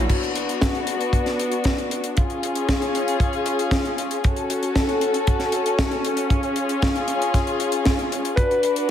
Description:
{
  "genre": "italo disco",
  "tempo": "116 BPM",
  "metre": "4/4",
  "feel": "straight",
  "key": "unclear",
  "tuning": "A4 = 439 Hz",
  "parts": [
    { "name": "dark chamber string section", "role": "sustained chords", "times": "0.0-8.9 s", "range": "B3 to B4", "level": "-22 LUFS", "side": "left 2 dB", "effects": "low-pass filter" },
    { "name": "kick drum", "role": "drums", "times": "0.1-8.5 s", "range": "none", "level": "-21 LUFS", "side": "equal", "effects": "none" },
    { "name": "tight funk drum kit", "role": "drums", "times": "0.1-8.9 s", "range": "crash cymbal, hi-hat, snare drum", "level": "-26 LUFS", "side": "left 1 dB", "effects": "gated reverb" },
    { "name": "warm electric grand piano", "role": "melody", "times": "8.4-8.9 s", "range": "B4", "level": "-22 LUFS", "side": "equal", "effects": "tape echo" }
  ],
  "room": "light reverb, small room ambience",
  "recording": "none",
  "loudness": "-20 LUFS",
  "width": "side -10 dB against mid",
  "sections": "0.1-8.9 A section",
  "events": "none",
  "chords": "0.1 Bm; 2.2 C#; 4.2 F#m; 6.3 C#; 8.4 Bm"
}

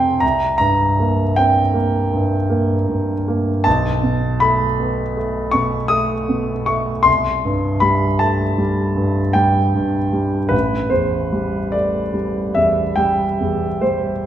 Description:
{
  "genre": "classical, impressionist solo piano",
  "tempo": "52 BPM (dotted quarters)",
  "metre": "9/8",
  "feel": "uneven beats, rubato",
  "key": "unclear",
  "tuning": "A4 = 441 Hz",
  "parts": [
    { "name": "warm grand piano", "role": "solo", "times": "0.0-14.3 s", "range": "A1 to D#6", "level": "-16 LUFS", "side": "equal", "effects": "none" }
  ],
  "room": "wet recital hall reverb, RT60 1.6 s",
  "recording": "none",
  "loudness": "-16 LUFS",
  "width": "side -10 dB against mid",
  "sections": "0.0-14.3 A section",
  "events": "none",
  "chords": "0.2 C5; 3.7 B9; 7.1 C5; 10.5 Am7"
}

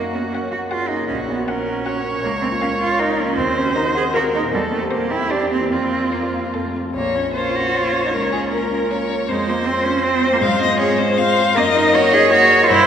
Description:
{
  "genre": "quick classical-period movement for piano quartet",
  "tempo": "157 BPM",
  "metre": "3/4",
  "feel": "rubato",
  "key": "Bb minor",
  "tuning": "A4 = 440 Hz",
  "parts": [
    { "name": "rich cello", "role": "second line", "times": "0.0-12.9 s", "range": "Gb3 to Ab4", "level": "-19 LUFS", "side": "right 3 dB", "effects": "none" },
    { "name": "rich viola", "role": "accompaniment", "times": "0.0-12.9 s", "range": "F4 to Eb5", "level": "-23 LUFS", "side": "right 1 dB", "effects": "none" },
    { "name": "warm concert grand piano", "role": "accompaniment", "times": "0.0-12.9 s", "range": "Bb1 to G5", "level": "-23 LUFS", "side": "equal", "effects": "none" },
    { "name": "rich violin", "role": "melody", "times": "0.3-12.9 s", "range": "Ab4 to Gb5", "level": "-22 LUFS", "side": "left 5 dB", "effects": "none" }
  ],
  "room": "wet church reverb, RT60 3.4 s",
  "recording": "none",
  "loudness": "-16 LUFS",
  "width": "side -8 dB against mid",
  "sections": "0.0-6.9 A section; 6.9-12.9 B section",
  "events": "none",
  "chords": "0.0 Gb; 1.1 Gb/Bb; 2.2 Bbm/Db; 3.4 Cm7b5/Eb; 4.5 C7/E; 5.7 Fsus4; 6.5 F; 6.9 Bbm; 8.1 Bbm/Db; 9.3 F5; 10.4 Fm/Ab; 11.6 Ebm/Gb"
}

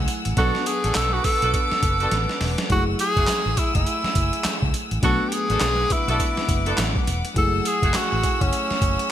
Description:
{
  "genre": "R&B, new jack swing",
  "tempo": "103 BPM",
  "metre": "4/4",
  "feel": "swing 61% on 16ths",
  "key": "F# minor",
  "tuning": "A4 = 439 Hz",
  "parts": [
    { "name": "mellow FM electric piano", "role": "accompaniment", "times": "0.0-9.1 s", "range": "F#3 to A4", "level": "-31 LUFS", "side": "left 2 dB", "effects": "chorus, tremolo" },
    { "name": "warm chamber string section", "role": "sustained chords", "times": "0.0-9.1 s", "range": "A3 to E6", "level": "-29 LUFS", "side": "left 1 dB", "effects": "none" },
    { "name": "vintage muted fingered electric bass", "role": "bass", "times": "0.0-9.0 s", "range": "E1 to C#2", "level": "-25 LUFS", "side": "equal", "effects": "none" },
    { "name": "boom bap sampler-style drum kit", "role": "drums", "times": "0.1-9.1 s", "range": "handclaps, hi-hat, kick drum, snare drum, tambourine", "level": "-24 LUFS", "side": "equal", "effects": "gated reverb" },
    { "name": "clear tenor saxophone", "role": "melody", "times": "0.4-9.1 s", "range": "C#4 to A4", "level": "-24 LUFS", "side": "equal", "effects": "none" },
    { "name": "warm horn section", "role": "stabs", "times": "0.4-8.0 s", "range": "A3 to A4", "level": "-31 LUFS", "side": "right 2 dB", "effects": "none" }
  ],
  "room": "light reverb",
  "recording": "bright 1980s-style digital production",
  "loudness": "-19 LUFS",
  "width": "side -11 dB against mid",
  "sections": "0.0-9.1 A section",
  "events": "drum fill 2.1-2.7",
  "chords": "0.4 Bm7; 2.7 F#m9; 5.0 Bm7; 7.4 F#m9"
}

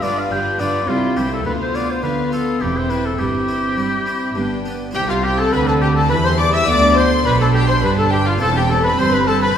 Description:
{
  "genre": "classical, baroque-style concerto movement with solo episodes",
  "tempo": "104 BPM",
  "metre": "3/4",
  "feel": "straight",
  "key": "C major",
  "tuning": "A4 = 437 Hz",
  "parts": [
    { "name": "warm chamber violin section", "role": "melody", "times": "0.0-9.6 s", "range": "F5 to E6", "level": "-24 LUFS", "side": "left 3 dB", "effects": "none" },
    { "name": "warm oboe", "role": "melody", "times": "0.0-9.6 s", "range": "F4 to G5", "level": "-20 LUFS", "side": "left 2 dB", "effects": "none" },
    { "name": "warm chamber violin section", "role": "second line", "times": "0.0-9.6 s", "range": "D4 to E5", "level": "-24 LUFS", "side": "left 2 dB", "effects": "none" },
    { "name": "dark chamber viola section", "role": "accompaniment", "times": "0.0-9.6 s", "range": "G3 to D4", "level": "-23 LUFS", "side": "right 1 dB", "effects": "none" },
    { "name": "harpsichord", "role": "accompaniment", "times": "0.0-9.6 s", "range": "C2 to F4", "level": "-28 LUFS", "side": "left 2 dB", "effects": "none" },
    { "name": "rich chamber double bass section", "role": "bass", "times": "0.0-9.5 s", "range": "E1 to G2", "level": "-23 LUFS", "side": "right 2 dB", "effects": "none" },
    { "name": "warm chamber cello section", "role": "bass", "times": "0.0-9.5 s", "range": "C2 to G3", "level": "-24 LUFS", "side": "right 3 dB", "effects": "none" }
  ],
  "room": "wet scoring stage reverb, RT60 2.0 s",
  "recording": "heard from further back in the room",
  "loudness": "-15 LUFS",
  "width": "side -8 dB against mid",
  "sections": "0.0-4.9 A section; 4.9-9.6 B section",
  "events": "none",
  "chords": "0.0 G7; 0.9 C; 1.5 Bdim/D; 2.6 C/E; 3.2 C/G; 4.4 G; 4.9 C; 6.7 G7; 8.4 C/E"
}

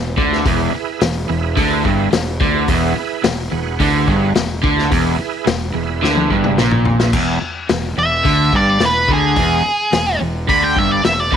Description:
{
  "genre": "blues rock power trio and southern rock",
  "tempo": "108 BPM",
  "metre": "4/4",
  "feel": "straight",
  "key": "E mixolydian",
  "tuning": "A4 = 440 Hz",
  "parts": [
    { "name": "crunchy overdriven guitar", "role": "riff", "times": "0.0-11.4 s", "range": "E2 to D3", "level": "-18 LUFS", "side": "right 1 dB", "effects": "none" },
    { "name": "fuzz fingered electric bass", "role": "bass", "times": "0.0-11.4 s", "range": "E1 to D2", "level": "-22 LUFS", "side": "equal", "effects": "overdrive" },
    { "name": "vintage drum kit", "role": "drums", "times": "0.2-11.4 s", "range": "crash cymbal, hi-hat, kick drum, snare drum, toms", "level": "-20 LUFS", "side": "left 2 dB", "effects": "none" },
    { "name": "tonewheel organ", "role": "sustained chords", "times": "0.3-7.1 s", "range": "E4 to F#5", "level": "-25 LUFS", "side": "right 11 dB", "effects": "slow rotary speaker, overdrive, chorus vibrato" },
    { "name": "octave-fuzz lead guitar", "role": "melody", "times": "8.0-11.4 s", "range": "G#4 to B5", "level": "-15 LUFS", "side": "right 1 dB", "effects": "distortion" }
  ],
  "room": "light reverb, small room ambience",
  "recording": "1960s-style stereo",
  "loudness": "-14 LUFS",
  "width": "side -8 dB against mid",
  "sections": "0.0-7.1 A section; 7.1-11.4 B section",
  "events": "drum fill 6.0-7.1; lead electric guitar solo 7.1-11.4",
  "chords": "0.0 E"
}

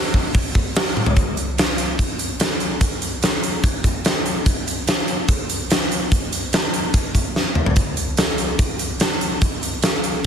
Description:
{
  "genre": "rock",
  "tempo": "145 BPM",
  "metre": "4/4",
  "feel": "straight",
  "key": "none",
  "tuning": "none",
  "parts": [
    { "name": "big rock drum kit", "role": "drums", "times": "0.1-10.1 s", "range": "hi-hat, kick drum, snare drum, toms", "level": "-18 LUFS", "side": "equal", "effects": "none" }
  ],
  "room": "light reverb",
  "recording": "dense, heavily limited modern master, lossy compression artefacts",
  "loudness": "-18 LUFS",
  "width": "side -8 dB against mid",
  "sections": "0.0-1.2 A section; 1.2-10.3 B section",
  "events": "drum fill 1.0, 7.4-7.8",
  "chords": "none"
}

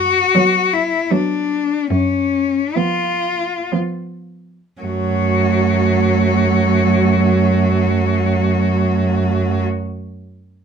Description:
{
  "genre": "classical, lyrical piece for cello ensemble",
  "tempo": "52-83 BPM",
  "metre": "3/4",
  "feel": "rubato",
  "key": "F# minor",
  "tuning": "A4 = 440 Hz",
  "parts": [
    { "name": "rich cello", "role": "melody", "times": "0.0-9.6 s", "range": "C#4 to F#4", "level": "-19 LUFS", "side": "left 6 dB", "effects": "none" },
    { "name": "rich cello", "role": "bass", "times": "0.0-9.6 s", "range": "F#2", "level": "-19 LUFS", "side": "right 2 dB", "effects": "none" },
    { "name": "rich cello", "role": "accompaniment", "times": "0.3-9.6 s", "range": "E#3 to F#3", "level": "-19 LUFS", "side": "equal", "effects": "none" },
    { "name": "warm cello", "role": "second line", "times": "0.4-9.6 s", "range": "A3 to B3", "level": "-21 LUFS", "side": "right 14 dB", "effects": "none" }
  ],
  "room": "light reverb",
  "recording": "none",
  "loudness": "-14 LUFS",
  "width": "side -7 dB against mid",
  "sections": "0.0-4.8 A section; 4.8-10.6 B section",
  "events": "slowing down 0.0-4.8",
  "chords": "0.0 Bm/F#; 1.9 C#7/F#; 4.8 F#m"
}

